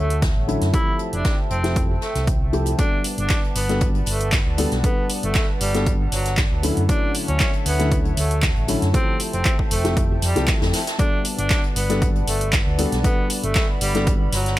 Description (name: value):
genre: deep house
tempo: 117 BPM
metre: 4/4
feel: swing 53% on 16ths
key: G major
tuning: A4 = 439 Hz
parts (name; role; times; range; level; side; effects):
- warm tenor saxophone; melody; 0.0-14.6 s; F#3 to E4; -27 LUFS; equal; tape echo
- hollow soft pad; sustained chords; 0.0-14.6 s; B4 to B5; -32 LUFS; equal; chorus, sidechain pumping
- overdriven fingered electric bass; bass; 0.0-14.6 s; F1 to F#2; -23 LUFS; equal; sidechain pumping
- punchy analog drum machine; drums; 0.1-14.6 s; handclaps, hi-hat; -26 LUFS; right 1 dB; overdrive
- electronic kick drum; drums; 0.2-14.2 s; none; -21 LUFS; equal; overdrive
- swinging big-band drum kit; drums; 0.2-14.6 s; hi-hat, snare drum; -33 LUFS; left 1 dB; high-pass filter on hats, high-pass filter on snare, high-pass filter on room
- felt-muted upright piano; stabs; 0.5-14.2 s; D3 to A4; -26 LUFS; left 2 dB; sidechain pumping, digital delay
room: small room ambience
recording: none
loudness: -18 LUFS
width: side -15 dB against mid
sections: 0.0-14.6 A section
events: none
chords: 0.0 Dmaj9; 0.7 Fmaj9; 2.8 Gmaj9; 6.6 Dmaj9; 8.9 Fmaj9; 11.0 Gmaj9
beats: 0.22 | 0.74 1.25 1.76 2.27 | 2.79 3.30 3.81 4.33 | 4.84 5.35 5.87 6.38 | 6.89 7.40 7.92 8.43 | 8.94 9.46 9.97 10.48 | 10.99 11.51 12.02 12.53 | 13.04 13.56 14.07 14.58